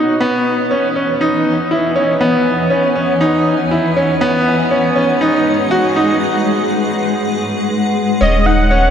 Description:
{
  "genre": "piano and strings electronica",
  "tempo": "120 BPM",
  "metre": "4/4",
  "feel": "straight",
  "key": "unclear",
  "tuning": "A4 = 440 Hz",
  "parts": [
    { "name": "granular cloud pad", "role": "sustained chords", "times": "0.0-8.9 s", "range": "E3 to G#5", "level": "-18 LUFS", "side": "left 2 dB", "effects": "built-in reverb" },
    { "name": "bright concert grand piano", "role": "riff", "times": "0.0-8.9 s", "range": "B3 to F#4", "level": "-14 LUFS", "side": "equal", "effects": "analog delay" },
    { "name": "warm velvety synth lead", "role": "melody", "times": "8.2-8.9 s", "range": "D#5 to F#5", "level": "-14 LUFS", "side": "left 1 dB", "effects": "chorus" },
    { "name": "warm sub bass", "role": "bass", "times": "8.2-8.9 s", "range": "D#1", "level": "-14 LUFS", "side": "equal", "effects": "none" }
  ],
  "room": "wet huge ambient reverb, RT60 7.2 s",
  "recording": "dreamy mix soaked in reverb",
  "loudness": "-12 LUFS",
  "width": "side -8 dB against mid",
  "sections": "0.0-8.2 A section",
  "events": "build-up 0.0-8.2; filter sweep on ambient pad 0.0-8.2; break 6.2-8.2",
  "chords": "0.2 Eadd9; 4.2 G#m7; 8.2 D#m7",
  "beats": "| 0.21 0.71 1.21 1.71 | 2.21 2.71 3.21 3.71 | 4.21 4.71 5.21 5.71 | 6.21 6.71 7.21 7.71 | 8.21 8.71"
}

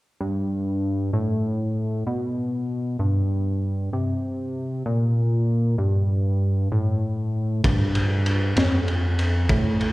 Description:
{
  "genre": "slow blues",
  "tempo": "65 BPM (dotted quarters)",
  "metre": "12/8",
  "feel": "straight",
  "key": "G mixolydian",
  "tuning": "A4 = 439 Hz",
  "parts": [
    { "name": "chorused synth bass", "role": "bass", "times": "0.2-9.9 s", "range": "F2 to C3", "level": "-22 LUFS", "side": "equal", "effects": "none" },
    { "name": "crunchy breakbeat drum kit", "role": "drums", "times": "7.6-9.9 s", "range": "kick drum, ride cymbal, snare drum", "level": "-23 LUFS", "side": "equal", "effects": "slapback echo" }
  ],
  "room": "little or no reverb",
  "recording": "live gig heard through the venue's PA, recital hall reverb",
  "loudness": "-21 LUFS",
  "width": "side -19 dB against mid",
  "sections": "0.2-7.6 A section; 7.6-9.9 B section",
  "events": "none",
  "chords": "none",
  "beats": "| 0.20 1.14 2.07 3.00 | 3.93 4.86 5.79 6.71 | 7.64 8.57 9.49"
}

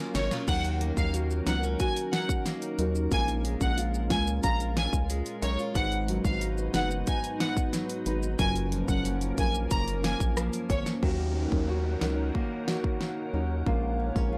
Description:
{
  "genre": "dancehall",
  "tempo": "91 BPM",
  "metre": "4/4",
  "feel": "straight",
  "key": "Eb minor",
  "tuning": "A4 = 440 Hz",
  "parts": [
    { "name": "glassy FM pad", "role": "sustained chords", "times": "0.0-14.4 s", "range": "Gb3 to Ab5", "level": "-39 LUFS", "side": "equal", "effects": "ensemble chorus, built-in reverb, sidechain pumping" },
    { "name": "nylon-string guitar", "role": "arpeggios", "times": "0.0-14.4 s", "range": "Gb2 to Gb4", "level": "-37 LUFS", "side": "equal", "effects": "none" },
    { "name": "clear studio violin section", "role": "melody", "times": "0.1-10.8 s", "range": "Db5 to Bb5", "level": "-35 LUFS", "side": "equal", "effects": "none" },
    { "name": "round analog bass", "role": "bass", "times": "0.1-14.4 s", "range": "Gb1 to Eb2", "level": "-33 LUFS", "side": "equal", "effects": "transformer saturation" },
    { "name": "pop drum kit", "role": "drums", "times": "0.1-14.3 s", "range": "crash cymbal, hi-hat, kick drum, rim click, snare drum", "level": "-32 LUFS", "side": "equal", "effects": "none" },
    { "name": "timbales and maracas", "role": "percussion", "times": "0.1-11.0 s", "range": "none", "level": "-44 LUFS", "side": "equal", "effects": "none" },
    { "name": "deep mellow chord stab", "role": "accompaniment", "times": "0.5-14.4 s", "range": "Gb3 to Cb5", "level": "-37 LUFS", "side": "equal", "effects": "chorus" },
    { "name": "downlifter", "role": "sound effects", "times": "11.0-14.4 s", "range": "none", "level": "-47 LUFS", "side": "equal", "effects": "none" }
  ],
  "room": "little or no reverb",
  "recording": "dry, gritty hardware recording, transformer saturation",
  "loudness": "-29 LUFS",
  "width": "mono",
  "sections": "0.0-11.0 A section; 11.0-14.4 B section",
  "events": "drum fill 0.0-0.5",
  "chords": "0.5 Ebm7; 3.1 Bbm7; 5.8 Abm7; 8.4 Gbmaj7; 11.0 Ebm7; 13.7 Bbm7",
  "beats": "| 0.48 1.14 1.80 2.46 | 3.12 3.77 4.43 5.09 | 5.75 6.41 7.07 7.73 | 8.39 9.05 9.71 10.37 | 11.03 11.69 12.35 13.01 | 13.66 14.32"
}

